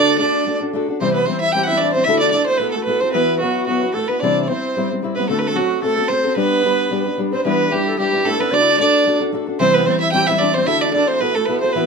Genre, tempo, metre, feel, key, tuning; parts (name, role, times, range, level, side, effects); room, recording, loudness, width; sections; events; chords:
celtic folk, Celtic reel; 223 BPM; 4/4; swing 54% on 8ths; A4 = 440 Hz
rich fiddle; melody; 0.0-11.9 s; F#4 to G5; -18 LUFS; right 4 dB
bright reedy wooden flute; second line; 0.0-11.9 s; F#4 to G5; -22 LUFS; left 3 dB
dark viola; second line; 0.0-11.9 s; F#3 to G4; -25 LUFS; right 6 dB
fingerpicked steel-string acoustic guitar; accompaniment; 0.0-11.9 s; C3 to C5; -20 LUFS; left 3 dB
moderate studio reverb, RT60 0.5 s; minimal, uncompressed stereo recording; -15 LUFS; side -5 dB against mid
0.0-7.4 A section; 7.4-11.9 A section
0.0 D; 1.0 C; 2.1 Dadd9; 3.1 Esus2; 4.2 C; 5.3 D7; 6.4 G; 7.4 Em7; 8.5 D; 9.6 C; 10.7 Dadd9